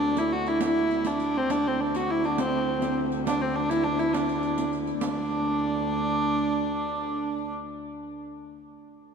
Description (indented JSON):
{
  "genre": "medieval dance",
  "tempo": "136 BPM (dotted quarters)",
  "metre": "6/8",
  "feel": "straight",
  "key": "D mixolydian",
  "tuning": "A4 = 440 Hz",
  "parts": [
    { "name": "rich hurdy-gurdy", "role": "melody", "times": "0.0-7.5 s", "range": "C4 to F#4", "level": "-26 LUFS", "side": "equal", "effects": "none" },
    { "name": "rich viola da gamba", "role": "drone", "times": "0.0-7.6 s", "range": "D2", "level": "-33 LUFS", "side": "right 1 dB", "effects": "none" },
    { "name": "riq", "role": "percussion", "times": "0.2-5.2 s", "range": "none", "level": "-35 LUFS", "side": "right 3 dB", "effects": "none" }
  ],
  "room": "wet cathedral reverb, RT60 5.0 s",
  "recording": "none",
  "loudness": "-24 LUFS",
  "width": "side -6 dB against mid",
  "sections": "0.0-5.0 A section; 5.0-6.8 B section",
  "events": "none",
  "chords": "none"
}